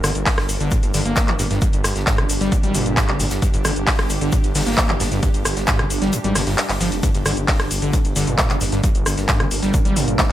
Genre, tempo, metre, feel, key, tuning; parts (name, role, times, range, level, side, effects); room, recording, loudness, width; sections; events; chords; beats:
driving peak-time techno; 133 BPM; 4/4; straight; G phrygian; A4 = 439 Hz
overdriven acid bass; riff; 0.0-10.3 s; G2 to Bb3; -24 LUFS; equal; distortion, wide subtle chorus, sidechain pumping, digital delay
detuned saw bass; bass; 0.0-10.2 s; F1 to Ab1; -24 LUFS; equal; sidechain pumping
techno drum kit; drums; 0.0-10.3 s; handclaps, hi-hat, rim click, shaker; -22 LUFS; equal
tight metal drum kit; drums; 0.0-10.3 s; hi-hat, shaker, snare drum; -33 LUFS; left 2 dB; sidechain pumping on hats, high-pass filter on hats, high-pass filter on snare, sidechain pumping on perc, high-pass filter on perc, high-pass filter on room
granular cloud pad; texture; 0.0-10.3 s; D4 to Bb4; -28 LUFS; right 2 dB; built-in reverb, lush chorus, sidechain pumping
electronic kick drum; drums; 0.3-10.3 s; -19 LUFS; equal
light reverb; bright 1980s-style digital production; -16 LUFS; side -13 dB against mid
0.0-10.3 A section
kick drops out 6.1-7.0
0.0 Gm
0.27 0.72 1.17 | 1.62 2.07 2.52 2.97 | 3.42 3.87 4.33 4.78 | 5.23 5.68 6.13 6.58 | 7.03 7.48 7.93 8.38 | 8.84 9.29 9.74 10.19